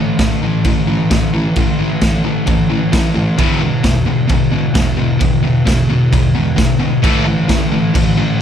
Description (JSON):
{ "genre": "garage rock duo or trio", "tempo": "132 BPM", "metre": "4/4", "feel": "straight", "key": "unclear", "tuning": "A4 = 440 Hz", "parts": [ { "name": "fuzz guitar", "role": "riff", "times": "0.0-8.4 s", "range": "E2 to A3", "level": "-14 LUFS", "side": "left 1 dB", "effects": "distortion" }, { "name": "raw garage drum kit", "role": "drums", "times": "0.2-8.1 s", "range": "crash cymbal, kick drum, snare drum", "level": "-16 LUFS", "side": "equal", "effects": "none" } ], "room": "moderate studio reverb, RT60 0.6 s", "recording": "none", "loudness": "-12 LUFS", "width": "side -8 dB against mid", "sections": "0.0-8.4 A section", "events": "none", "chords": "0.0 A5; 3.4 E5; 7.0 A5", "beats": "0.19 0.65 1.11 | 1.56 2.02 2.48 2.93 | 3.39 3.85 4.30 4.76 | 5.22 5.67 6.13 6.58 | 7.04 7.49 7.95" }